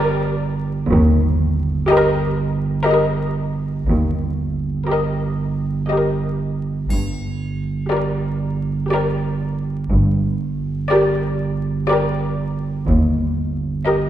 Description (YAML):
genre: cinematic, suspense film score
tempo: 60 BPM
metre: 3/4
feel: straight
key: G minor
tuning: A4 = 440 Hz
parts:
  - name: muted chamber violin section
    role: melody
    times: 0.0-14.1 s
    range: D5 to Eb5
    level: -25 LUFS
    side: left 4 dB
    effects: none
  - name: muted chamber violin section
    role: second line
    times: 0.0-14.1 s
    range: Bb4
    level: -24 LUFS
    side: left 2 dB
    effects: none
  - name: muted studio viola section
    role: accompaniment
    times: 0.0-14.1 s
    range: G4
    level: -22 LUFS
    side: equal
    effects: none
  - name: saturated sub bass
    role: drone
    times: 0.0-14.1 s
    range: G1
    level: -21 LUFS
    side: right 2 dB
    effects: none
  - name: muted chamber cello section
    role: bass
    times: 0.9-13.7 s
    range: Eb2 to G2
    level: -22 LUFS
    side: right 1 dB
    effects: none
  - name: muted symphonic double bass section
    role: bass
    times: 0.9-13.7 s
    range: G1 to Eb2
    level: -21 LUFS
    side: equal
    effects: none
  - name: triangle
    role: percussion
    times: 6.9-8.9 s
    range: none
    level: -39 LUFS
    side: right 1 dB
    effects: none
room: wet scoring stage reverb, RT60 2.1 s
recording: heard from further back in the room, vinyl crackle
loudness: -17 LUFS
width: side -11 dB against mid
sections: 0.0-14.1 A section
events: none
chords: 0.0 Gm; 0.9 Eb/G; 6.9 Gm; 12.9 Eb/G